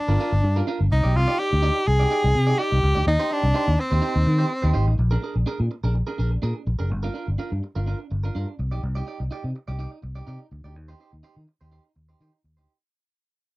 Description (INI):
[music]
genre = disco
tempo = 125 BPM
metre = 4/4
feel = straight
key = C minor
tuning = A4 = 439 Hz
[part]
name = edgy tenor saxophone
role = melody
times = 0.0-4.8 s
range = C4 to Ab4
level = -23 LUFS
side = equal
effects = none
[part]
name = clean electric guitar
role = accompaniment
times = 0.1-12.7 s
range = D4 to D5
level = -31 LUFS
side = right 4 dB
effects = none
[part]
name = fingered electric bass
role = bass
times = 0.1-12.7 s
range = F#1 to Eb3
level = -22 LUFS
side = equal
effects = none
[sound]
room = little or no reverb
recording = dry, close 1970s-style studio recording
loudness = -20 LUFS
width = side -20 dB against mid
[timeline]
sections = 0.0-5.0 A section; 5.0-12.7 B section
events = fade-out 5.0-12.7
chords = 0.0 Gm7; 0.9 Cmadd9; 3.1 Eb6; 5.0 Bb7; 6.9 Gm7; 8.6 Cmadd9; 10.8 Eb6